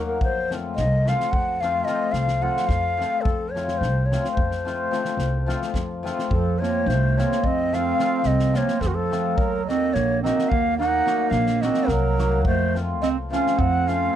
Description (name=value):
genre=balkan folk, Balkan wedding band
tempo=216 BPM (eighths)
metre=11/8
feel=straight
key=F phrygian dominant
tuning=A4 = 439 Hz
part: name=breathy reedy ney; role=melody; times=0.0-14.2 s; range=Gb4 to Gb5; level=-24 LUFS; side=left 1 dB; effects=none
part: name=cimbalom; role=accompaniment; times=0.0-14.2 s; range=F3 to Gb4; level=-28 LUFS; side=left 6 dB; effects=none
part: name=upright bass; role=bass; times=0.0-14.1 s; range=Bb1 to F2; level=-25 LUFS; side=equal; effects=none
part: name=loose indie drum kit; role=percussion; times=0.2-13.9 s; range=kick drum, snare drum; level=-29 LUFS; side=equal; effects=none
part: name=mellow clarinet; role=second line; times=6.3-14.2 s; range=Eb3 to Eb4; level=-25 LUFS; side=right 11 dB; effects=none
room=little or no reverb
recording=none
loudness=-20 LUFS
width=side -10 dB against mid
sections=0.0-6.3 A section; 6.3-14.2 A section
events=none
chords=0.2 F; 9.4 Ebm; 12.5 F